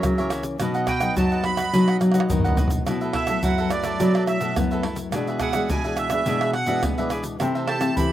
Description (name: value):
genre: samba and choro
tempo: 106 BPM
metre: 4/4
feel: straight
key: unclear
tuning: A4 = 441 Hz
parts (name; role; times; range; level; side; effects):
- cavaquinho; accompaniment; 0.0-8.1 s; D4 to F#5; -30 LUFS; right 2 dB; slapback echo
- nylon-string guitar; accompaniment; 0.0-8.1 s; F#2 to E4; -28 LUFS; left 5 dB; none
- nylon-string guitar; bass; 0.0-8.1 s; B2 to B3; -24 LUFS; equal; none
- egg shaker, surdo, pandeiro and tamborim; percussion; 0.0-8.1 s; none; -26 LUFS; right 1 dB; none
- accordion; melody; 0.9-8.1 s; D5 to B5; -26 LUFS; right 4 dB; light tremolo tuning, slapback echo
room: little or no reverb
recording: recorded outdoors, with no room sound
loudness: -20 LUFS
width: side -12 dB against mid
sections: 0.0-8.1 A section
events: accordion solo 0.0-8.1; drum fill 2.0-2.9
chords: 0.0 F#7; 0.6 B; 2.9 B7sus4; 5.1 E7/B; 7.4 Am/C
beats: 0.04 | 0.60 1.17 1.73 2.30 | 2.87 3.43 4.00 4.57 | 5.13 5.70 6.27 6.83 | 7.40 7.97